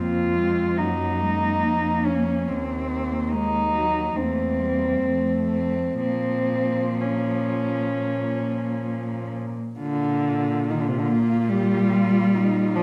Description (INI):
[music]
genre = classical, lyrical piece for cello ensemble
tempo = 60-75 BPM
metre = 4/4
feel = rubato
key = Bb minor, Bb major from 9.8 s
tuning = A4 = 439 Hz
[part]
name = muted cello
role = melody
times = 0.0-12.8 s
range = C4 to F4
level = -28 LUFS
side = equal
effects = none
[part]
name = muted cello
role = second line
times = 0.0-12.8 s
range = A3 to G4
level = -34 LUFS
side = equal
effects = none
[part]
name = muted cello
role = accompaniment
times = 0.0-12.8 s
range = C3 to C4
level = -28 LUFS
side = equal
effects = none
[part]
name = muted cello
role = bass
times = 0.0-12.8 s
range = Eb2 to Bb2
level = -30 LUFS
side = equal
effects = none
[sound]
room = moderate recital hall reverb, RT60 1.7 s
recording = none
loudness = -23 LUFS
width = mono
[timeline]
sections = 0.0-9.8 A section; 9.8-12.8 B section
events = none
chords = 0.0 Dbmaj7 (rootless); 0.8 Gb; 2.5 Ebm6; 4.2 C7/E; 5.0 F; 6.0 Bbm; 9.8 Bb